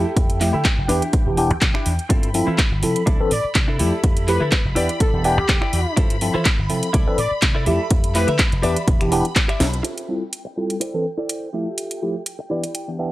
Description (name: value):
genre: filtered disco house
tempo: 124 BPM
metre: 4/4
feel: swing 54% on 16ths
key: G mixolydian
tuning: A4 = 442 Hz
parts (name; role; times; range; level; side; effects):
- tine electric piano; accompaniment; 0.0-13.1 s; E3 to A4; -22 LUFS; equal; medium stereo tremolo, phaser, sidechain pumping, low-pass filter
- phased string machine; sustained chords; 0.0-13.1 s; G5 to B5; -32 LUFS; equal; ensemble chorus, phaser, sidechain pumping, low-pass filter
- direct-recorded clean electric guitar; riff; 0.0-13.1 s; C4 to B5; -27 LUFS; equal; analog chorus, sidechain pumping, low-pass filter
- slap bass with an envelope filter; bass; 0.0-9.8 s; E1 to E3; -23 LUFS; equal; sidechain pumping, low-pass filter
- electronic kick drum; drums; 0.2-9.5 s; none; -19 LUFS; equal; studio reverb
- house drum kit; drums; 0.2-12.9 s; finger snaps, handclaps, hi-hat, snare drum; -23 LUFS; equal; sidechain pumping on hats, studio reverb, sidechain pumping on cymbals
- analog synth brass; melody; 3.3-8.3 s; G4 to D5; -26 LUFS; left 2 dB; chorus, sidechain pumping, low-pass filter, tape echo
room: little or no reverb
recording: dry, gritty hardware recording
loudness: -17 LUFS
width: side -16 dB against mid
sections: 0.0-9.8 A section; 9.8-13.1 B section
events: filter sweep 0.0-9.8, 9.8-13.1; drum fill 9.6; band accent 9.6; clean electric guitar fill 12.3-13.1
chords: 0.0 Fmaj9; 0.9 Em7; 2.1 G13sus4; 3.1 C69; 3.8 Fmaj9; 4.8 Em7; 6.0 G13sus4; 6.9 C69; 7.7 Fmaj9; 8.6 Em7; 9.8 G13sus4; 10.8 C69; 11.5 Fmaj9; 12.5 Em7